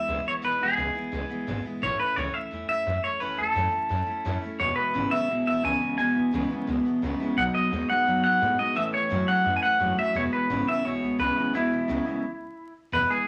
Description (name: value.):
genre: rockabilly.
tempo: 173 BPM.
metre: 4/4.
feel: straight.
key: E major.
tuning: A4 = 440 Hz.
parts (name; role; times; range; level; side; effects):
clean electric guitar; melody; 0.0-13.3 s; E4 to G#5; -28 LUFS; equal; none.
picked steel-string acoustic guitar; accompaniment; 0.0-13.3 s; E2 to F#4; -37 LUFS; equal; none.
upright bass; bass; 0.0-13.1 s; E1 to A2; -37 LUFS; equal; none.
electric guitar through a small old amp; riff; 4.6-12.2 s; E2 to G#3; -30 LUFS; equal; none.
room: wet studio reverb, RT60 0.9 s.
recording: vinyl crackle.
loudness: -26 LUFS.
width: mono.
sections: 0.0-12.9 A section.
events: stop 12.2-12.9.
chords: 0.0 E; 1.8 A; 4.6 E; 7.4 B; 8.8 A; 10.2 E.